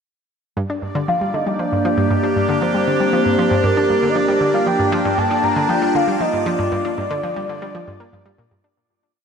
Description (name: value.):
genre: ambient, sequencer-driven space music.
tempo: 117 BPM.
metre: 4/4.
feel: straight.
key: G minor.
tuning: A4 = 440 Hz.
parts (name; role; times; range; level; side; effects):
evolving wavetable pad; sustained chords; 1.4-8.7 s; Bb3 to G4; -20 LUFS; equal; phaser, built-in reverb, shimmer reverb.
analog pluck; riff; 0.6-8.7 s; G2 to D4; -22 LUFS; equal; chorus, ping-pong delay.
bubbling stepped-filter texture; texture; 0.6-8.8 s; D5; -28 LUFS; right 2 dB; chorus, built-in reverb, shimmer reverb.
soft octave-layered synth lead; melody; 1.1-8.0 s; Bb4 to Bb5; -21 LUFS; left 1 dB; chorus, phaser, shimmer reverb, ping-pong delay.
room: wet lush hall reverb, RT60 2.9 s.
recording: dreamy mix soaked in reverb.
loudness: -16 LUFS.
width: side -6 dB against mid.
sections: 0.6-8.8 A section.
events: fade-out 6.0-8.8.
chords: 0.6 Gm.